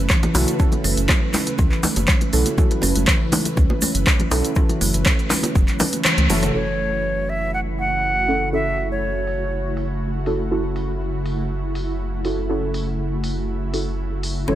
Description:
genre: afro house.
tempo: 121 BPM.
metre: 4/4.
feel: straight.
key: F# minor.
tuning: A4 = 440 Hz.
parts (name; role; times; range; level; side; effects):
ethereal airy pad; sustained chords; 0.0-14.6 s; C#3 to B4; -28 LUFS; right 1 dB; ensemble chorus, built-in reverb, sidechain pumping.
deep mellow chord stab; stabs; 0.0-14.6 s; C#4 to A4; -27 LUFS; right 2 dB; chorus, sidechain pumping, digital delay.
round analog bass; bass; 0.0-14.6 s; E1 to C#2; -24 LUFS; equal; sidechain pumping.
kalimba; arpeggios; 0.1-6.4, 14.5-14.6 s; E3 to C#4; -27 LUFS; right 2 dB; sidechain pumping, digital delay.
deep house drum kit; drums; 0.1-14.3 s; crash cymbal, handclaps, hi-hat, rim click, toms; -23 LUFS; equal; low-pass filter on hats, small room ambience, low-pass filter on snare, low-pass filter on toms, low-pass filter on cymbals.
electronic kick drum; drums; 0.1-5.7 s; none; -18 LUFS; equal; small room ambience.
egg shaker; percussion; 0.1-6.5 s; none; -31 LUFS; right 4 dB; none.
bongos; percussion; 0.2-6.4 s; none; -26 LUFS; equal; none.
congas; percussion; 0.2-6.4, 14.5-14.6 s; none; -28 LUFS; left 3 dB; none.
concert flute; melody; 6.5-9.9, 14.5-14.6 s; C#5 to F#5; -23 LUFS; right 1 dB; digital delay.
room: light reverb.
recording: none.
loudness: -18 LUFS.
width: side -12 dB against mid.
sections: 0.0-6.5 A section; 6.5-14.6 B section.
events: kick drops out 6.1-6.5; band accent 6.1; drum fill 6.3; filter sweep on drum 6.5-14.6.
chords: 0.0 F#m7.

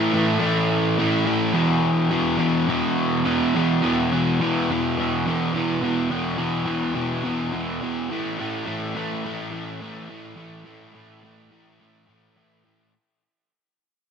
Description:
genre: rock.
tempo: 106 BPM.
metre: 4/4.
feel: straight.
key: unclear.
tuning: A4 = 440 Hz.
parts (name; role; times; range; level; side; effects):
crunchy overdriven guitar; solo; 0.0-12.9 s; E2 to A3; -21 LUFS; equal; wide subtle chorus, ping-pong delay.
room: moderate plate reverb, RT60 2.3 s.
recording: bright 1980s-style digital production.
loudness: -20 LUFS.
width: side -7 dB against mid.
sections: 0.0-3.8 A section; 3.8-12.9 B section.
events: fade-out 3.8-12.9.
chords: 0.0 A5; 1.6 E5; 8.1 A5.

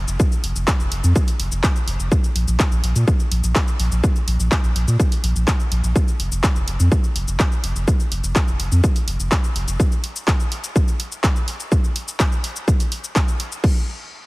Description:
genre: melodic techno.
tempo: 125 BPM.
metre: 4/4.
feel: straight.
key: unclear.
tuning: A4 = 440 Hz.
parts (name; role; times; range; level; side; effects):
round analog bass; bass; 0.0-9.8 s; F1 to Bb2; -19 LUFS; equal; tube saturation, sidechain pumping.
house drum kit; drums; 0.1-13.7 s; crash cymbal, handclaps, hi-hat, shaker; -26 LUFS; equal; overdrive.
electronic kick drum; drums; 0.2-13.7 s; none; -18 LUFS; equal; overdrive.
room: little or no reverb.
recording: heavily compressed radio sound.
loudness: -17 LUFS.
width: side -22 dB against mid.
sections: 0.0-13.6 A section.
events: drop 0.0-13.6.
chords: none.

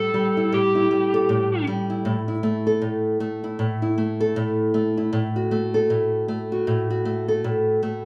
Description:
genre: pop.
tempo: 78 BPM.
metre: 4/4.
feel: swing 60% on 16ths.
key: unclear.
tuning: A4 = 439 Hz.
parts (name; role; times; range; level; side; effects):
overdriven slide guitar; melody; 0.0-1.6 s; G4 to A4; -23 LUFS; equal; none.
nylon-string guitar; accompaniment; 0.0-8.1 s; A2 to A4; -24 LUFS; equal; none.
room: moderate large studio reverb, RT60 0.8 s.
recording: band playing live in one room.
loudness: -23 LUFS.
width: mono.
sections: 0.0-8.1 A section.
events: none.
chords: 0.0 A5; 5.1 F#m/A.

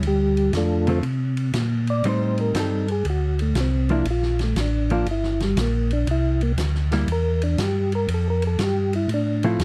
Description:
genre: soul jazz organ trio.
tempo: 119 BPM.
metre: 4/4.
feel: swing 67% on 8ths.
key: unclear.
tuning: A4 = 440 Hz.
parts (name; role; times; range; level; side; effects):
hollow-body jazz guitar; accompaniment; 0.0-9.6 s; D3 to F4; -26 LUFS; equal; none.
mellow tonewheel organ; bass; 0.0-9.6 s; G1 to C3; -25 LUFS; equal; chorus vibrato, slow rotary speaker.
vintage drum kit; drums; 0.0-9.6 s; hi-hat, ride cymbal, snare drum; -34 LUFS; equal; none.
percussive tonewheel organ; melody; 0.1-9.6 s; G3 to D5; -27 LUFS; equal; slow rotary speaker, chorus vibrato.
room: little or no reverb.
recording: dark, warm production.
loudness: -22 LUFS.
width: mono.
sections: 0.0-9.6 A section.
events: tonewheel organ solo 0.0-9.6.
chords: 0.0 Dm7; 2.0 Am7b5; 3.1 C7sus2; 4.1 Gm7; 6.1 C7; 8.1 Fmaj7.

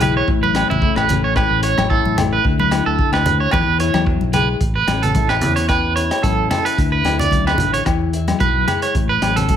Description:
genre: highlife guitar band.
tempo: 111 BPM.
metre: 4/4.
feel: swing 54% on 16ths.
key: A major.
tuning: A4 = 435 Hz.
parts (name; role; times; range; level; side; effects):
clean electric guitar; accompaniment; 0.0-9.6 s; A2 to C#5; -23 LUFS; left 12 dB; none.
electric guitar at the edge of break-up; arpeggios; 0.0-9.6 s; E4 to D5; -19 LUFS; right 6 dB; tremolo, slapback echo.
fingered electric bass; bass; 0.0-9.6 s; A1 to E2; -21 LUFS; equal; none.
crunchy breakbeat drum kit; drums; 0.0-9.6 s; hi-hat, kick drum, rim click; -22 LUFS; equal; none.
agogo bells; percussion; 0.0-9.4 s; none; -27 LUFS; left 6 dB; none.
congas; percussion; 0.0-9.6 s; none; -23 LUFS; left 2 dB; none.
room: light reverb, studio reverb.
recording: none.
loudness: -14 LUFS.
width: side -9 dB against mid.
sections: 0.0-4.6 A section; 4.6-9.6 B section.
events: none.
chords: 0.3 Aadd9; 2.4 Dsus2; 3.5 E; 4.6 Aadd9; 6.8 Dsus2; 7.9 E; 8.9 Aadd9.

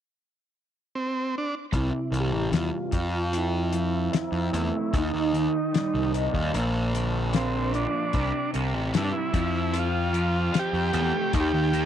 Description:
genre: psychedelic rock.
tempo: 75 BPM.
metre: 4/4.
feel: straight.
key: unclear.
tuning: A4 = 438 Hz.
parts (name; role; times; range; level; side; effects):
overdriven combo organ; melody; 1.0-11.9 s; C4 to G4; -29 LUFS; right 2 dB; low-pass filter, slapback echo.
overdriven electric guitar; riff; 1.7-11.9 s; Bb2 to Eb4; -29 LUFS; equal; flanger, low-pass filter.
fuzz picked electric bass; bass; 1.7-11.9 s; A1 to G2; -27 LUFS; equal; overdrive.
cloth-damped thuddy drum kit; drums; 1.7-11.9 s; hi-hat, kick drum, snare drum; -28 LUFS; left 3 dB; none.
room: little or no reverb.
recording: 1960s-style stereo.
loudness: -23 LUFS.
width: side -10 dB against mid.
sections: 0.0-1.7 A section; 1.7-11.9 B section.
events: filter sweep 1.7-11.9.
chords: 0.0 N.C.; 1.7 C; 2.9 F; 4.9 Eb; 6.5 Bb; 8.1 C5; 9.3 F; 11.3 Eb.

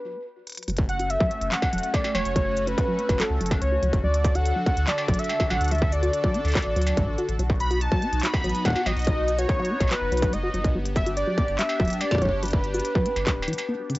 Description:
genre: IDM.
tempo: 143 BPM.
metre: 4/4.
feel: straight.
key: F# phrygian.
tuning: A4 = 436 Hz.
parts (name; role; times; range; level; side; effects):
warm velvety synth lead; melody; 0.0-13.9 s; A4 to B5; -27 LUFS; equal; chorus, cassette tape, analog delay.
industrial drum kit; drums; 0.5-14.0 s; cabasa, handclaps, hi-hat, struck metal; -31 LUFS; equal; studio ambience, cassette tape.
phased analog pad; sustained chords; 0.7-14.0 s; D3 to A4; -33 LUFS; equal; phaser, chorus, cassette tape.
deep acid bass; arpeggios; 0.7-14.0 s; F#2 to F#4; -30 LUFS; equal; cassette tape, tape echo.
round analog bass; bass; 0.7-13.5 s; D1 to D2; -27 LUFS; equal; none.
electronic kick drum; drums; 0.8-13.3 s; none; -25 LUFS; equal; distortion, studio ambience, cassette tape.
room: light reverb.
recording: home recording on cassette, nothing above 7.9 kHz.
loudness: -21 LUFS.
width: side -19 dB against mid.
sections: 0.7-14.0 A section.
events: break 0.0-0.7; drum fill 0.5.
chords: 0.0 N.C.; 0.7 F#m; 4.0 D; 7.4 B; 10.7 G.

